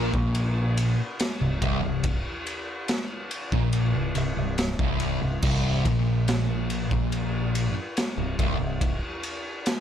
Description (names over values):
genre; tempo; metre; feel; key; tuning
stoner and doom metal; 71 BPM; 4/4; straight; unclear; A4 = 439 Hz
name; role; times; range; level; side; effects
fuzz guitar; riff; 0.0-8.9 s; C2 to Bb2; -25 LUFS; equal; distortion
growling fingered electric bass; bass; 0.0-9.0 s; C1 to Bb1; -30 LUFS; equal; overdrive, tube saturation
raw garage drum kit; drums; 0.1-9.8 s; crash cymbal, kick drum, ride cymbal, snare drum; -28 LUFS; equal; none
room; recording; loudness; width
studio ambience; none; -24 LUFS; side -9 dB against mid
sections
0.0-9.8 A section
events
none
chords
none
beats
0.35 1.19 | 2.04 2.89 3.73 4.58 | 5.43 6.27 7.12 7.96 | 8.81 9.65